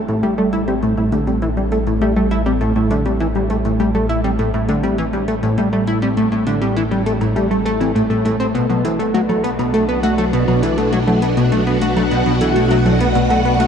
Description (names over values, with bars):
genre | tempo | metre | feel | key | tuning
ambient, sequencer-driven space music | 101 BPM | 4/4 | straight | A dorian | A4 = 440 Hz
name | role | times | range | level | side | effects
phased string machine | sustained chords | 0.0-13.7 s | A2 to F#5 | -22 LUFS | equal | ensemble chorus, phaser, shimmer reverb
warbly dusty pluck | arpeggios | 0.0-13.7 s | F#3 to A4 | -20 LUFS | left 1 dB | chorus, auto-pan, analog delay, shimmer reverb
analog drone | bass | 0.3-13.7 s | A1 to B1 | -24 LUFS | equal | chorus
plucky analog bass | riff | 0.1-13.7 s | A2 to F#4 | -18 LUFS | equal | wide subtle chorus, analog delay, shimmer reverb
electronic hi-hat and woodblock | percussion | 0.1-13.7 s | none | -39 LUFS | right 1 dB | analog delay
room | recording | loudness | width
wet cathedral reverb, RT60 5.6 s | in a vast, echoing space, cassette tape | -14 LUFS | side -7 dB against mid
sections
0.0-13.7 A section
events
fade-in on string machine 0.0-13.7; fade-in on drum 0.0-13.7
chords
0.0 Am; 8.6 Bm